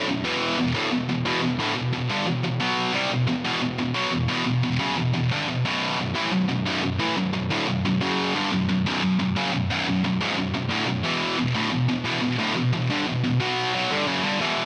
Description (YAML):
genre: metal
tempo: 89 BPM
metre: 4/4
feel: straight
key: unclear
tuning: A4 = 440 Hz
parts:
  - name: heavy high-gain guitar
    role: solo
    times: 0.0-14.7 s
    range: B1 to B3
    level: -24 LUFS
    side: equal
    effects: distortion, delay
room: light reverb, digital ambience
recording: none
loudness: -24 LUFS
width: mono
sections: 0.0-14.7 A section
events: none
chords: 0.3 E5; 5.6 B5; 11.1 E5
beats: | 0.25 0.92 1.60 2.27 | 2.95 3.62 4.30 4.97 | 5.65 6.32 7.00 7.68 | 8.35 9.03 9.70 10.38 | 11.05 11.73 12.40 13.08 | 13.75 14.42